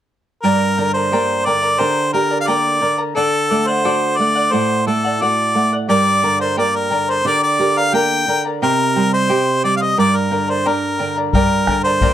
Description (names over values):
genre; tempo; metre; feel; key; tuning
andean folk, Andean ensemble; 88 BPM; 2/4; straight; G harmonic minor; A4 = 439 Hz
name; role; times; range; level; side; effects
clear harmonica; melody; 0.4-12.1 s; A4 to G5; -16 LUFS; left 1 dB; none
charango; accompaniment; 0.4-12.1 s; G4 to C6; -22 LUFS; left 2 dB; none
nylon-string guitar; accompaniment; 0.4-12.1 s; G2 to G4; -20 LUFS; right 4 dB; none
bombo; percussion; 11.3-12.1 s; none; -18 LUFS; left 2 dB; none
room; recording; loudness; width
light reverb; close, detailed microphones; -14 LUFS; side -11 dB against mid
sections
0.4-11.3 A section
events
none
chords
0.4 Gm; 3.2 D; 5.9 Gm; 8.6 Cm; 10.0 Gm